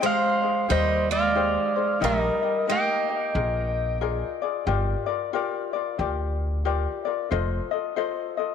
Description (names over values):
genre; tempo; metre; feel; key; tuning
Hawaiian; 91 BPM; 4/4; swing 62% on 8ths; unclear; A4 = 441 Hz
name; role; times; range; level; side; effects
pedal steel guitar; melody; 0.0-4.0 s; Bb4 to G5; -24 LUFS; equal; tape echo
picked steel-string acoustic guitar; second line; 0.0-4.0 s; G3 to Bb3; -29 LUFS; right 10 dB; none
ukulele; accompaniment; 0.0-8.5 s; Eb4 to Eb5; -28 LUFS; left 10 dB; none
upright bass; bass; 0.7-7.6 s; F1 to Eb2; -27 LUFS; equal; none
room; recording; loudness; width
moderate echo chamber reverb, RT60 1.8 s, small room ambience; 1960s-style stereo with parts hard left and right, lossy compression artefacts; -23 LUFS; side -7 dB against mid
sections
0.0-8.5 A section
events
none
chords
0.0 Abmaj7; 2.0 Eb/Bb; 3.3 Bb7; 4.7 Gm7; 7.3 F7